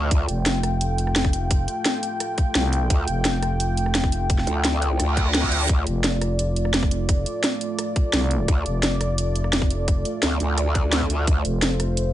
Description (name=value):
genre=dark technical drum and bass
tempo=172 BPM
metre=4/4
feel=straight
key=D minor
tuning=A4 = 438 Hz
part: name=dark analog pad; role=sustained chords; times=0.0-12.1 s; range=A3 to G5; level=-27 LUFS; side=equal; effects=chorus, sidechain pumping
part: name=growl bass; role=bass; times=0.0-0.3, 2.9-5.9, 8.5-11.4 s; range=D2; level=-22 LUFS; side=equal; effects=chorus, overdrive
part: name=drum and bass drum kit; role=drums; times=0.1-12.0 s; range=hi-hat, rim click, snare drum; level=-24 LUFS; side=equal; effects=studio reverb
part: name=electronic kick drum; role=drums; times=0.1-11.3 s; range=none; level=-21 LUFS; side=equal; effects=studio reverb
part: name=growling FM bass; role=bass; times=0.3-12.1 s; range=F1 to C2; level=-24 LUFS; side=equal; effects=none
part: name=reverse cymbal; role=sound effects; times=5.1-5.7 s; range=none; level=-26 LUFS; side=right 4 dB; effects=none
room=little or no reverb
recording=nothing above 10.7 kHz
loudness=-20 LUFS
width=side -13 dB against mid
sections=0.0-12.1 A section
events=reverse cymbal 5.1-5.7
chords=0.0 Dm